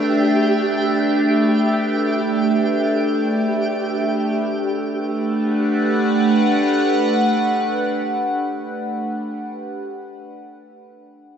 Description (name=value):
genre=ambient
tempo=free time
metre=none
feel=none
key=G major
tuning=A4 = 440 Hz
part: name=evolving wavetable pad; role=sustained chords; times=0.0-9.5 s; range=A3 to F#5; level=-18 LUFS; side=equal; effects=chorus, built-in reverb, phaser
part: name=twinkling granular texture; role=texture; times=0.0-4.6 s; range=G4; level=-26 LUFS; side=right 4 dB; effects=built-in reverb
room=wet concert hall reverb, RT60 2.4 s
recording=nothing above 7.7 kHz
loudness=-17 LUFS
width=side -8 dB against mid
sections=0.0-4.5 A section; 4.5-8.7 B section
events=none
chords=0.0 Gadd9; 4.5 Gmaj9